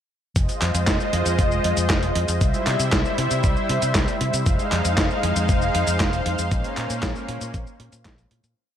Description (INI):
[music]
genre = italo disco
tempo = 117 BPM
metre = 4/4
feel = straight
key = F minor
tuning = A4 = 438 Hz
[part]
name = lush unison pad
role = sustained chords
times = 0.4-8.5 s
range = G3 to F5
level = -24 LUFS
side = equal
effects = chorus
[part]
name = fingered electric bass with an envelope filter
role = bass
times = 0.4-8.5 s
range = F1 to C3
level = -25 LUFS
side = equal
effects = none
[part]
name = dusty soul sampler-style drum kit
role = drums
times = 0.4-8.5 s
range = cabasa, handclaps, hi-hat, snare drum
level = -26 LUFS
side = equal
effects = overdrive, studio reverb
[part]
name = electronic kick drum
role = drums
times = 0.4-8.2 s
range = none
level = -24 LUFS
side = equal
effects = overdrive, studio reverb
[sound]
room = light reverb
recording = none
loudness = -19 LUFS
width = side -9 dB against mid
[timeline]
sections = 0.4-8.6 chorus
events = fade-out 5.8-8.6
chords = 0.4 Fm7; 2.4 C; 4.5 Fm7; 6.5 Bbmadd9